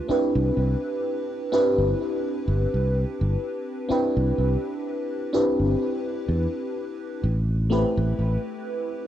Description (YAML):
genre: vaporwave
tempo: 63 BPM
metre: 4/4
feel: swing 55% on 16ths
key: C major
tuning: A4 = 439 Hz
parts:
  - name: FM electric piano with soft pad layer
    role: accompaniment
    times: 0.0-9.1 s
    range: A3 to B4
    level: -24 LUFS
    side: equal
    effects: phaser, lush chorus, tape echo
  - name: fingered electric bass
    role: bass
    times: 0.1-8.4 s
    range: G1 to E2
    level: -23 LUFS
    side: equal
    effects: none
room: moderate huge ambient reverb, RT60 4.4 s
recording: cassette tape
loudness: -22 LUFS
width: side -11 dB against mid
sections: 0.0-9.1 A section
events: none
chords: 0.1 Cmaj7; 7.2 Am9